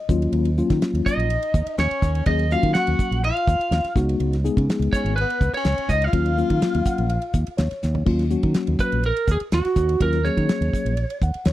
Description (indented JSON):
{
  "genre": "electric jazz fusion",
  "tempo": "124 BPM",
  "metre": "4/4",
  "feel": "straight",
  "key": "Eb minor",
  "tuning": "A4 = 438 Hz",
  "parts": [
    { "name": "mellow tine electric piano", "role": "accompaniment", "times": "0.0-11.5 s", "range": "Gb3 to Gb5", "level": "-24 LUFS", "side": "left 3 dB", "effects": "medium stereo tremolo" },
    { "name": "fingered electric bass", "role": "bass", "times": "0.1-11.5 s", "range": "Ab1 to Eb3", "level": "-22 LUFS", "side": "equal", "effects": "none" },
    { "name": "damped 70s drum kit", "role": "drums", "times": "0.1-11.5 s", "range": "crash cymbal, hi-hat, kick drum, ride cymbal, snare drum, toms", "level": "-24 LUFS", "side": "equal", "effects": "none" },
    { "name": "lightly driven lead guitar", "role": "melody", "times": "1.1-11.2 s", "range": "Gb4 to Gb5", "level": "-24 LUFS", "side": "right 3 dB", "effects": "none" },
    { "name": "breathy tenor saxophone", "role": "second line", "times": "1.1-7.6 s", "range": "Cb4 to Gb4", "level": "-29 LUFS", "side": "left 9 dB", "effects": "none" }
  ],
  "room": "small room ambience",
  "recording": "dry, close 1970s-style studio recording",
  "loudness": "-19 LUFS",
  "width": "side -14 dB against mid",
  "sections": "0.0-8.1 A section; 8.1-11.5 A section",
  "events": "tine electric piano fill 0.0-0.3, 6.6-8.1, 11.0-11.5; drum fill 7.8",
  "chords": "0.1 Ebm9; 4.0 Db9sus4; 6.1 Ebm9; 8.1 Ebm7"
}